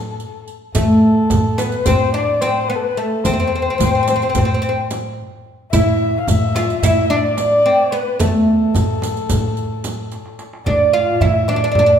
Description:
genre	Turkish makam ensemble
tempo	218 BPM (eighths)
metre	9/8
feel	straight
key	A makam nihavent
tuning	A4 = 440 Hz
part	oud	melody	0.0-11.9 s	A3 to F4	-17 LUFS	right 1 dB	none
part	dark kamancheh	second line	0.0-12.0 s	A4 to F5	-21 LUFS	left 4 dB	none
part	upright bass	bass	0.0-12.0 s	E2 to A2	-22 LUFS	equal	none
part	darbuka	percussion	0.2-11.9 s	none	-26 LUFS	right 1 dB	none
part	riq	percussion	0.2-10.5 s	none	-28 LUFS	right 6 dB	none
part	frame drum	percussion	0.7-11.9 s	none	-24 LUFS	right 1 dB	none
part	dark double bass	drone	10.7-12.0 s	A2	-25 LUFS	left 1 dB	none
room	wet recital hall reverb, RT60 1.5 s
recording	minimal, uncompressed stereo recording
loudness	-14 LUFS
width	side -8 dB against mid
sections	0.0-10.7 A section; 10.7-12.0 B section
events	drum fill 10.1-10.7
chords	none

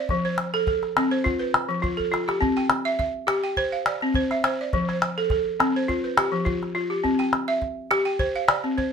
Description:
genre	west african traditional, West African string and xylophone music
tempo	104 BPM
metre	4/4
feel	swing 53% on 16ths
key	C major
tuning	A4 = 440 Hz
part	balafon	arpeggios	0.0-8.9 s	F3 to G5	-23 LUFS	equal	none
part	calabash	percussion	0.1-8.9 s	none	-24 LUFS	left 1 dB	none
room	wet studio reverb, RT60 0.5 s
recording	minimal, uncompressed stereo recording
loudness	-21 LUFS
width	side -7 dB against mid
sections	0.0-8.9 A section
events	drum fill 2.0-2.4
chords	0.1 F; 2.4 C; 4.7 F; 7.0 C

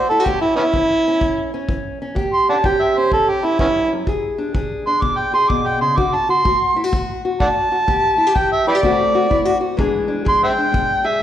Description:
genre	acoustic country blues, solo or duo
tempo	126 BPM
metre	4/4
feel	swing 66% on 8ths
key	unclear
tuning	A4 = 438 Hz
part	overdriven harmonica	melody	0.0-11.2 s	B3 to D6	-16 LUFS	right 1 dB	none
part	fingerpicked steel-string acoustic guitar	accompaniment	0.0-11.2 s	E2 to G#4	-21 LUFS	left 1 dB	none
part	kick drum	drums	0.3-10.9 s	none	-24 LUFS	equal	none
room	moderate recital hall reverb, RT60 1.6 s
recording	recorded in a church or concert hall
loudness	-15 LUFS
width	side -11 dB against mid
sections	0.0-11.2 A section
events	harmonica solo 0.0-11.2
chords	0.3 A7; 4.1 E7; 6.0 D7; 7.9 A5; 8.8 D7; 9.8 E7

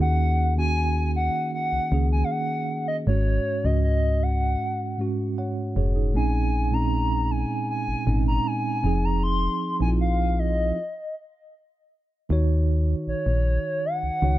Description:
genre	R&B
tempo	78 BPM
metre	4/4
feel	straight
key	Eb dorian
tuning	A4 = 442 Hz
part	hollow clarinet-like synth lead	melody	0.0-14.4 s	Db5 to C6	-27 LUFS	left 1 dB	chorus
part	mellow tine electric piano	accompaniment	0.0-14.4 s	Ab2 to Gb5	-27 LUFS	right 3 dB	medium stereo tremolo
part	solid FM bass	bass	0.0-14.4 s	F1 to Eb2	-23 LUFS	left 1 dB	none
room	light reverb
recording	dark, warm production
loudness	-22 LUFS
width	side -15 dB against mid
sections	0.0-12.3 A section; 12.3-14.4 B section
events	stop 10.8-12.3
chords	0.0 Ebm7; 3.1 Ab7sus4; 6.1 Bbm11; 8.8 Fm7; 12.3 Ebm7

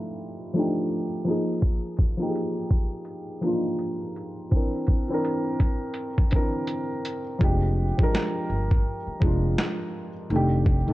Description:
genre	lo-fi hip hop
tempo	83 BPM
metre	4/4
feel	swing 59% on 16ths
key	F dorian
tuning	A4 = 440 Hz
part	felt-muted upright piano	accompaniment	0.0-10.9 s	D3 to Bb4	-27 LUFS	equal	low-pass filter
part	boom bap sampler-style drum kit	drums	1.6-10.9 s	hi-hat, kick drum, snare drum	-22 LUFS	equal	overdrive, vintage 12-bit sampler grit
part	upright bass	bass	7.4-10.9 s	F1 to A1	-25 LUFS	equal	none
room	light reverb, studio reverb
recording	cassette tape, low-pass filter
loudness	-23 LUFS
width	side -17 dB against mid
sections	0.0-7.4 A section; 7.4-10.9 B section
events	filter sweep 0.0-7.4; hi-hats muted 7.4-10.9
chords	0.0 F13; 1.3 Bb7sus4; 4.5 C9; 7.4 Fm69; 10.3 F13

